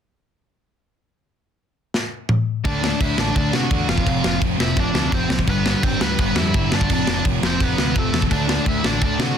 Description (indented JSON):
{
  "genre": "punk rock",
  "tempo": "169 BPM",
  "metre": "4/4",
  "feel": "straight",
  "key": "unclear",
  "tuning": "A4 = 436 Hz",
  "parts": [
    { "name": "tight metal drum kit", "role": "drums", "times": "1.9-9.3 s", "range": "crash cymbal, kick drum, snare drum, toms", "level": "-21 LUFS", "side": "equal", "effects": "none" },
    { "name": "overdriven semi-hollow guitar", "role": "riff", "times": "2.6-9.4 s", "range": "F2 to D4", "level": "-25 LUFS", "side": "left 13 dB", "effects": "none" },
    { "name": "overdriven semi-hollow guitar", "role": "riff", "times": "2.6-9.4 s", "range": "F2 to D4", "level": "-26 LUFS", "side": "right 14 dB", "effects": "none" },
    { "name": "scooped high-gain guitar", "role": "riff", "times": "2.6-9.4 s", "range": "F2 to D4", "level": "-30 LUFS", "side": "right 1 dB", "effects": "none" },
    { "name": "growling picked electric bass", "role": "bass", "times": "2.6-9.3 s", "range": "F1 to C3", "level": "-25 LUFS", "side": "equal", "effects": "overdrive" },
    { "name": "biting lead guitar", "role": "melody", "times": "2.7-9.4 s", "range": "A3 to F#5", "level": "-25 LUFS", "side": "equal", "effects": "overdrive, tape echo" }
  ],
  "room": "light reverb",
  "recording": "dense, heavily limited modern master",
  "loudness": "-17 LUFS",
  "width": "side -8 dB against mid",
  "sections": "1.2-2.6 A section; 2.6-9.4 B section",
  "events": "drum fill 1.9-2.6",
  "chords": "1.2 N.C.; 2.6 D; 3.9 F5; 5.5 G; 6.9 F; 8.3 D"
}